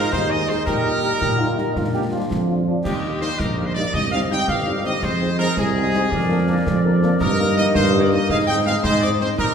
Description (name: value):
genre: military-style march for wind band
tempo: 110 BPM (dotted quarters)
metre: 6/8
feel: straight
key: Eb major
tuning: A4 = 440 Hz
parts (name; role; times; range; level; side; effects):
- bright trumpet section; melody; 0.0-9.5 s; G4 to G5; -24 LUFS; right 1 dB; none
- clear euphonium; second line; 0.0-2.8 s; D4 to G4; -27 LUFS; right 1 dB; none
- warm woodwind section; second line; 0.0-9.5 s; G4 to Eb5; -27 LUFS; left 2 dB; none
- dark trombone section; sustained chords; 0.0-9.5 s; F3 to Eb4; -28 LUFS; right 2 dB; none
- mellow tuba; bass; 0.0-9.5 s; G1 to Bb2; -21 LUFS; right 1 dB; none
- concert snare drum, concert bass drum and clash cymbals; drums; 0.1-9.5 s; none; -27 LUFS; equal; none
- dark French horn section; accompaniment; 0.3-9.3 s; F3 to Ab4; -29 LUFS; left 2 dB; none
room: wet recital hall reverb, RT60 1.7 s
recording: recorded in a church or concert hall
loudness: -17 LUFS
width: side -7 dB against mid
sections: 0.0-2.8 A section; 2.8-9.5 B section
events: none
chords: 0.0 Ab5; 0.7 Eb/Bb; 1.8 Bb; 2.8 Eb; 3.9 Cm; 5.0 Fm7; 6.1 Bb7/F; 7.2 Eb/G; 8.3 Ab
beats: 0.12 | 0.67 1.21 | 1.76 2.30 | 2.85 3.39 | 3.94 4.48 | 5.03 5.57 | 6.12 6.66 | 7.21 7.75 | 8.30 8.84 | 9.39